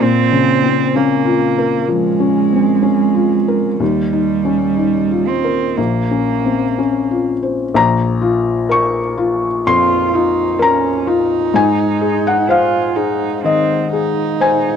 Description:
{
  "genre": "neoclassical piano and strings",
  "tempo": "63 BPM",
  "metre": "4/4",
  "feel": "rubato",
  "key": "Bb minor",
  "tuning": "A4 = 440 Hz",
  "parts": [
    { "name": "dark cello", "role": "second line", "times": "0.0-14.8 s", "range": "G3 to F4", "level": "-18 LUFS", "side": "right 14 dB", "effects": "none" },
    { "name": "felt-muted upright piano", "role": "accompaniment", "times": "0.0-14.8 s", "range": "Bb1 to Db6", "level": "-14 LUFS", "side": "left 4 dB", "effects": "none" }
  ],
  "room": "light reverb",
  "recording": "dry, close 1970s-style studio recording",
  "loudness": "-13 LUFS",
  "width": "side -7 dB against mid",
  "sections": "0.0-7.8 A section; 7.8-14.8 B section",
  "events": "none",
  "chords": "0.0 Bbm; 3.8 Ebadd9; 5.8 Bbmadd9; 11.6 Ab"
}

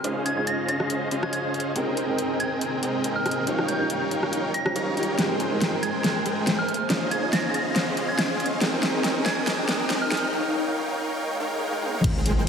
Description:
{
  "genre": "future bass",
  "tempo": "140 BPM",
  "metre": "4/4",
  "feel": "swing 54% on 16ths, half-time",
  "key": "Ab major",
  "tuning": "A4 = 444 Hz",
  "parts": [
    { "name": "felt-muted upright piano", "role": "accompaniment", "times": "0.0-10.3 s", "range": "G3 to G5", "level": "-32 LUFS", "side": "right 2 dB", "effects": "sidechain pumping, analog delay" },
    { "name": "ethereal airy pad", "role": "sustained chords", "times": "0.0-10.3 s", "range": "C3 to G5", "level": "-34 LUFS", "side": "left 1 dB", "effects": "ensemble chorus, built-in reverb, tremolo, sidechain pumping" },
    { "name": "dense compressed supersaw", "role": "riff", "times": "0.0-12.5 s", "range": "Ab3 to Bb5", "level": "-27 LUFS", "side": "right 1 dB", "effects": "sidechain pumping, low-pass filter, analog delay" },
    { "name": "dubstep drum kit", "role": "drums", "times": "0.0-12.3 s", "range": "crash cymbal, hi-hat, rim click, snare drum, toms", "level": "-28 LUFS", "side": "equal", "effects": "overdrive" },
    { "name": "riser, swell and impact", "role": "sound effects", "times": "0.0-12.5 s", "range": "none", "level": "-34 LUFS", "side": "left 1 dB", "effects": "none" },
    { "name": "soft synth bell", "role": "melody", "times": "0.3-10.2 s", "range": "F6 to Bb6", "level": "-31 LUFS", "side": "right 1 dB", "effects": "chorus, sidechain pumping, analog delay" },
    { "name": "warm 808-style bass", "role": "bass", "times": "12.0-12.5 s", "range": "Ab1", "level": "-24 LUFS", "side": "equal", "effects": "sidechain pumping" },
    { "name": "electronic kick drum", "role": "drums", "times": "12.0-12.1 s", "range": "none", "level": "-25 LUFS", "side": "equal", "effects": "none" }
  ],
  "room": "wet lush hall reverb, RT60 1.9 s",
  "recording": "dreamy mix soaked in reverb, high-pass filter",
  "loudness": "-22 LUFS",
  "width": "side -7 dB against mid",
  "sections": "0.0-12.0 A section",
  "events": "build-up 0.0-12.0; riser 0.0-10.3; filter sweep on ambient pad 0.0-12.0; drum fill 5.2-10.3, 11.8; break 10.3-12.0; swell 11.3-12.0; impact 12.0-12.5",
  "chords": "0.0 Dbmaj9; 1.8 Abmaj9/C; 3.5 Eb9; 5.2 Abmaj9; 6.7 Dbmaj9; 8.6 Abmaj9/C; 10.3 Eb9"
}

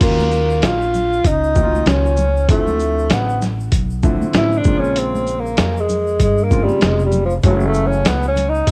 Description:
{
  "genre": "hip hop, jazz-hop",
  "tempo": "97 BPM",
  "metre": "4/4",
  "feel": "swing 58% on 16ths",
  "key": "unclear",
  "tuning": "A4 = 440 Hz",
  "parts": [
    { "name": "breathy tenor saxophone", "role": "melody", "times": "0.0-8.7 s", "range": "F3 to F4", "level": "-20 LUFS", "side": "equal", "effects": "cassette tape" },
    { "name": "warm grand piano", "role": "accompaniment", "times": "0.0-8.3 s", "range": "Db3 to Gb4", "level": "-25 LUFS", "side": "equal", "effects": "none" },
    { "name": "upright bass", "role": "bass", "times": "0.0-8.7 s", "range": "F1 to G2", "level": "-22 LUFS", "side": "equal", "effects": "none" },
    { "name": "dusty soul sampler-style drum kit", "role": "drums", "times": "0.0-8.7 s", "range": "crash cymbal, hi-hat, kick drum, shaker, snare drum", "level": "-20 LUFS", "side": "equal", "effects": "vintage 12-bit sampler grit, cassette tape" },
    { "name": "tube shaker and congas", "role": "percussion", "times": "0.0-8.7 s", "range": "none", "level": "-31 LUFS", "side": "equal", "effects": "none" }
  ],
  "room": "small room ambience",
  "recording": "home recording on cassette",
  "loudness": "-16 LUFS",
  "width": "mono",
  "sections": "0.0-8.7 A section",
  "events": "tenor saxophone solo 0.0-8.7",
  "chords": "0.0 Ebm9; 2.5 Dm9; 4.7 Bbm9; 7.4 Gbm9"
}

